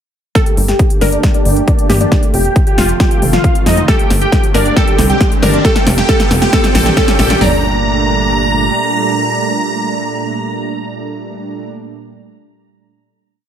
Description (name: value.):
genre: uplifting trance.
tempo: 136 BPM.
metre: 4/4.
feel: straight.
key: G minor.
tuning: A4 = 441 Hz.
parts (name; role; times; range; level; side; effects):
supersaw chords; melody; 0.4-11.7 s; D4 to Bb5; -17 LUFS; equal; sidechain pumping, low-pass filter, tape echo.
glassy wavetable pluck; second line; 0.4-11.7 s; F4 to D5; -20 LUFS; equal; chorus, tape echo.
lush unison pad; sustained chords; 0.4-11.7 s; Bb2 to G4; -20 LUFS; right 2 dB; chorus, sidechain pumping.
big-room dance drum kit; drums; 0.4-7.5 s; hi-hat, kick drum, snare drum, toms; -14 LUFS; equal; overdrive, studio reverb.
big-room dance drum kit; drums; 0.4-7.4 s; hi-hat, snare drum, toms; -17 LUFS; left 1 dB; overdrive, studio reverb, sidechain pumping on hats, sidechain pumping on toms.
riser; sound effects; 2.7-7.4 s; none; -23 LUFS; equal; none.
plucky analog bass; bass; 0.6-8.7 s; F1 to G2; -16 LUFS; equal; sidechain pumping.
room: light reverb.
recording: none.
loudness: -10 LUFS.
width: side -9 dB against mid.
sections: 0.4-7.4 build; 7.4-10.9 final chord.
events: build-up 0.4-7.4; drum fill 0.4-7.4; filter sweep on supersaw synth 0.4-7.4; riser 2.7-7.4.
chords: 0.4 Gmadd9; 2.1 F; 3.9 Gmadd9; 4.8 Csus2; 5.6 F; 6.5 Bbadd9; 7.4 Gmadd9.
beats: | 0.35 0.79 1.24 1.68 | 2.12 2.56 3.00 3.44 | 3.88 4.32 4.76 5.21 | 5.65 6.09 6.53 6.97 | 7.41 7.85 8.29 8.73 | 9.18 9.62 10.06 10.50.